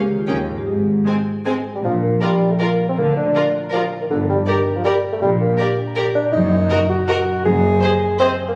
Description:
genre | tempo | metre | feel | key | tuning
cinematic, playful, whimsical film cue | 160 BPM | 3/4 | straight | Bb major | A4 = 440 Hz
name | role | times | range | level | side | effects
marimba with medium hard mallets | melody | 0.0-1.6 s | Eb4 to Ab4 | -28 LUFS | equal | none
concert harp | arpeggios | 0.0-8.6 s | Gb2 to C6 | -28 LUFS | equal | none
warm chamber violin section | melody | 0.3-8.3 s | D5 to Ab5 | -35 LUFS | equal | none
rich studio violin section | second line | 0.3-8.3 s | C4 to C5 | -26 LUFS | equal | none
rich symphonic viola section | accompaniment | 0.3-8.3 s | Ab3 to Ab4 | -29 LUFS | equal | none
rich chamber cello section | bass | 0.3-7.8 s | Eb2 to D3 | -26 LUFS | equal | none
warm chamber double bass section | bass | 0.3-7.8 s | Gb1 to Eb2 | -31 LUFS | equal | none
dark bassoon | accompaniment | 1.5-8.5 s | D3 to Ab4 | -21 LUFS | equal | none
mellow tuba | bass | 1.8-7.8 s | Gb1 to D2 | -29 LUFS | equal | none
room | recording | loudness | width
moderate scoring stage reverb, RT60 1.8 s | recorded on a phone in the room, club reverb, compression | -18 LUFS | mono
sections
0.0-1.8 A section; 1.8-8.6 B section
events
none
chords
0.3 Eb7; 0.7 Ab; 1.8 Bb; 3.0 Bb/D; 4.1 Gm; 5.2 Gm/Bb; 6.3 Ebm/Gb; 7.5 Ab7/Gb

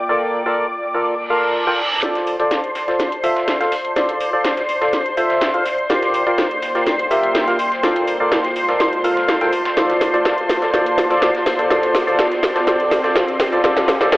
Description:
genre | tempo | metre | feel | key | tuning
piano house | 124 BPM | 4/4 | straight | D minor | A4 = 442 Hz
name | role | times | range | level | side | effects
analog string pad | sustained chords | 0.0-14.2 s | C5 to D6 | -22 LUFS | equal | ensemble chorus
warbly tape-like pad | texture | 0.0-14.2 s | Bb3 to A5 | -24 LUFS | equal | chorus, built-in reverb
percussive organ stab | riff | 0.1-14.2 s | F4 to G5 | -18 LUFS | equal | lush chorus, tape echo
reverse cymbal and riser | sound effects | 1.3-14.2 s | none | -28 LUFS | right 1 dB | none
dusty soul sampler-style drum kit | drums | 2.0-14.2 s | hi-hat, shaker, snare drum | -30 LUFS | equal | high-pass filter on perc, high-pass filter on snare, high-pass filter on hats
house drum kit | drums | 2.0-14.2 s | cabasa, hi-hat, snare drum | -20 LUFS | equal | overdrive
room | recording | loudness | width
moderate lush hall reverb, RT60 2.2 s | dry, gritty hardware recording, telephone sound | -15 LUFS | side -20 dB against mid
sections
0.0-2.0 A section; 2.0-14.2 B section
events
reverse cymbal 1.3-2.0; build-up 2.0-14.2; drum fill 2.0-14.2; riser 2.0-14.2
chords
0.0 Bbmaj7; 2.0 Dm7; 5.7 Gm7; 7.6 Bbmaj7; 9.8 Dm7

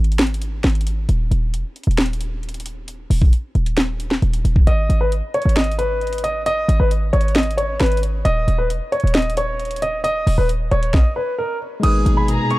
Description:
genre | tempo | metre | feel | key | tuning
hip hop, trap | 134 BPM | 4/4 | half-time | G# minor | A4 = 441 Hz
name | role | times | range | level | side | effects
short 808-style bass | bass | 0.0-12.4 s | D#1 to G#1 | -19 LUFS | equal | none
trap drum kit | drums | 0.0-12.6 s | crash cymbal, hi-hat, kick drum, snare drum | -19 LUFS | equal | none
warm concert grand piano | melody | 4.7-12.6 s | A#4 to D#6 | -21 LUFS | equal | tape echo
tine electric piano | accompaniment | 11.8-12.6 s | G#3 to B4 | -22 LUFS | left 3 dB | overdrive
warm studio string section | sustained chords | 11.8-12.6 s | A#2 to G#4 | -23 LUFS | equal | none
warm studio violin section | second line | 12.3-12.6 s | A#5 | -24 LUFS | left 1 dB | none
room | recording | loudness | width
small room ambience | dark, warm production | -16 LUFS | side -19 dB against mid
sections
0.0-11.8 A section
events
break 0.0-4.7; drum fill 4.2-4.7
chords
0.0 N.C.; 4.7 G#m; 8.3 C#sus2/D#; 11.8 G#madd9

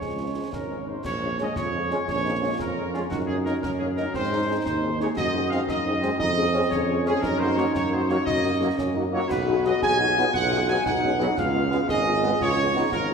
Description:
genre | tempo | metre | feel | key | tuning
military-style march for wind band | 116 BPM (dotted quarters) | 6/8 | straight | unclear | A4 = 440 Hz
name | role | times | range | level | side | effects
warm trumpet section | melody | 0.0-13.1 s | F4 to G#5 | -26 LUFS | equal | none
clear euphonium | second line | 0.0-13.1 s | Ab3 to G#4 | -29 LUFS | right 2 dB | none
dark trombone section | sustained chords | 0.0-12.8 s | F3 to Eb4 | -32 LUFS | right 1 dB | none
mellow tuba | bass | 0.0-13.1 s | G#1 to Ab2 | -27 LUFS | right 2 dB | none
concert snare drum, concert bass drum and clash cymbals | drums | 0.0-13.1 s | none | -36 LUFS | left 1 dB | none
mellow French horn section | accompaniment | 0.2-13.1 s | F3 to Ab4 | -31 LUFS | left 5 dB | none
room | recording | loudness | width
wet concert hall reverb, RT60 2.6 s | none | -22 LUFS | side -6 dB against mid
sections
0.0-1.0 A section; 1.0-13.1 B section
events
none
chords
0.0 Db; 1.0 Bbm7; 3.1 Ebm7/Gb; 4.1 Ab; 5.2 Ab7/Gb; 6.2 Db/F; 7.2 Ebm/Gb; 9.3 G#m7/B; 11.4 C#7

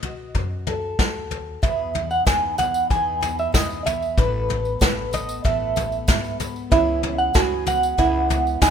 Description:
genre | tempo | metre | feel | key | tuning
indie folk with a building arrangement | 94 BPM | 4/4 | straight | E major | A4 = 440 Hz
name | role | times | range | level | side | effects
electric guitar through a small old amp | melody | 0.0-8.7 s | B4 to G#5 | -22 LUFS | right 2 dB | tremolo
fingerpicked steel-string acoustic guitar | accompaniment | 0.0-1.6 s | B2 to B4 | -31 LUFS | left 4 dB | none
upright bass | bass | 0.0-8.7 s | A1 to B2 | -30 LUFS | left 1 dB | none
soft brush drum kit | drums | 0.0-8.7 s | kick drum, snare drum, toms | -22 LUFS | left 1 dB | none
picked twelve-string acoustic guitar | accompaniment | 1.6-8.7 s | E2 to A4 | -33 LUFS | left 8 dB | none
tambourine | percussion | 1.6-8.7 s | none | -38 LUFS | right 5 dB | none
dark upright piano | accompaniment | 6.7-8.7 s | C#2 to C#5 | -35 LUFS | left 4 dB | none
open-back banjo | arpeggios | 6.7-8.7 s | D#4 to F#4 | -23 LUFS | right 6 dB | none
room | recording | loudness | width
little or no reverb | rough home demo mix | -19 LUFS | side -8 dB against mid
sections
0.0-1.6 A section; 1.6-8.7 B section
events
none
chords
0.0 B7; 1.6 Emaj7; 4.2 Asus2; 6.7 C#m7

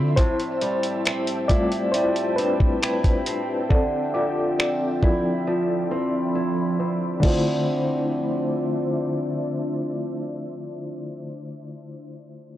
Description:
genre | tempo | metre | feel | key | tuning
contemporary R&B | 68 BPM | 4/4 | straight | D dorian | A4 = 441 Hz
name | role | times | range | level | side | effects
FM electric piano with tremolo | accompaniment | 0.0-12.6 s | D3 to D5 | -26 LUFS | left 2 dB | low-pass filter
ethereal airy pad | sustained chords | 0.0-11.3 s | F3 to C6 | -31 LUFS | right 1 dB | ensemble chorus, built-in reverb, sidechain pumping, low-pass filter
picked acoustic archtop guitar | arpeggios | 0.0-11.4 s | A2 to E4 | -26 LUFS | right 1 dB | low-pass filter, tape echo
dusty soul sampler-style drum kit | drums | 0.2-7.4 s | crash cymbal, finger snaps, hi-hat, kick drum | -22 LUFS | equal | none
room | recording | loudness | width
little or no reverb | dry, gritty hardware recording, cassette tape | -21 LUFS | side -13 dB against mid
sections
0.0-7.2 A section; 7.2-10.8 B section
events
FM electric piano solo 0.0-7.2; filter sweep 0.0-7.2; break 5.5-7.2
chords
0.2 Am7; 3.7 Dm9

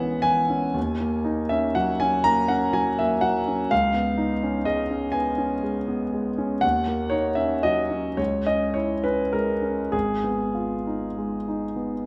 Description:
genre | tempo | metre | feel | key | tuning
classical, impressionist solo piano | 32-42 BPM (dotted quarters) | 6/8 | rubato | unclear | A4 = 440 Hz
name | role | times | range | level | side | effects
clear grand piano | solo | 0.0-12.1 s | G#1 to A#5 | -24 LUFS | equal | none
room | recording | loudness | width
moderate scoring stage reverb, RT60 1.6 s | none | -24 LUFS | mono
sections
0.0-12.1 A section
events
none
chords
0.0 C#m7; 0.8 D#m7; 3.7 C#9; 6.6 D#m7; 8.2 C#m; 9.9 G#m6

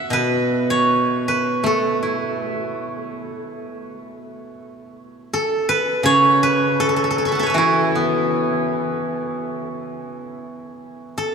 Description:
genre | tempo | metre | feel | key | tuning
chinese traditional, Chinese solo plucked strings | 70-83 BPM | 4/4 | rubato | E zhi mode | A4 = 440 Hz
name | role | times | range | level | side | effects
steel-string zither | solo | 0.0-11.3 s | B2 to C#6 | -18 LUFS | right 1 dB | none
room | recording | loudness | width
wet cathedral reverb, RT60 7.3 s | in a vast, echoing space | -17 LUFS | side -6 dB against mid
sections
0.0-10.8 A section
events
none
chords
none

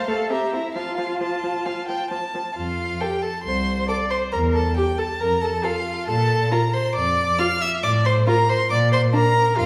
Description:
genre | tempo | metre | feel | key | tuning
quick classical-period movement for string quartet | 137 BPM | 4/4 | straight | F major | A4 = 439 Hz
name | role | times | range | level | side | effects
rich violin | melody | 0.0-9.7 s | F5 to F6 | -27 LUFS | equal | none
warm violin | second line | 0.0-9.2 s | D4 to A5 | -31 LUFS | equal | none
rich cello | bass | 0.0-9.7 s | C2 to A4 | -26 LUFS | equal | none
rich viola | accompaniment | 0.1-9.7 s | F3 to F5 | -27 LUFS | equal | none
room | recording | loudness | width
wet recital hall reverb, RT60 1.6 s | heard from further back in the room | -22 LUFS | mono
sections
0.0-2.6 A section; 2.6-9.7 B section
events
none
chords
0.3 C7; 0.8 F; 4.3 Emadd11; 5.2 F; 6.1 Bb; 7.8 F/A (rootless); 8.7 Bb

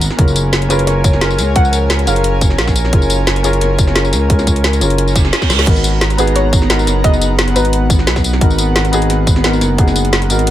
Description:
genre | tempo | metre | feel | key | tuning
liquid drum and bass | 175 BPM | 4/4 | straight | unclear | A4 = 440 Hz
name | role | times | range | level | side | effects
warm concert grand piano | accompaniment | 0.0-10.5 s | E#3 to A#5 | -18 LUFS | left 1 dB | digital delay
airy breathy pad | sustained chords | 0.0-10.5 s | B3 to A#5 | -23 LUFS | right 1 dB | chorus, sidechain pumping
smooth gliding synth bass | bass | 0.0-10.5 s | F#1 to C#2 | -15 LUFS | equal | none
drum and bass drum kit | drums | 0.0-10.5 s | crash cymbal, hi-hat, snare drum, tambourine | -18 LUFS | equal | none
electronic kick drum | drums | 0.2-9.9 s | none | -13 LUFS | equal | none
soft round pluck | melody | 0.7-2.4, 6.2-7.9 s | B4 to F#5 | -21 LUFS | equal | analog chorus, cassette tape, digital delay
reverse cymbal | sound effects | 5.1-5.7 s | none | -20 LUFS | right 9 dB | none
room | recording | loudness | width
little or no reverb | none | -10 LUFS | side -12 dB against mid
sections
0.0-10.5 A section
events
reverse cymbal 5.1-5.7; drum fill 5.5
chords
0.2 F#maj9; 5.7 G#m9

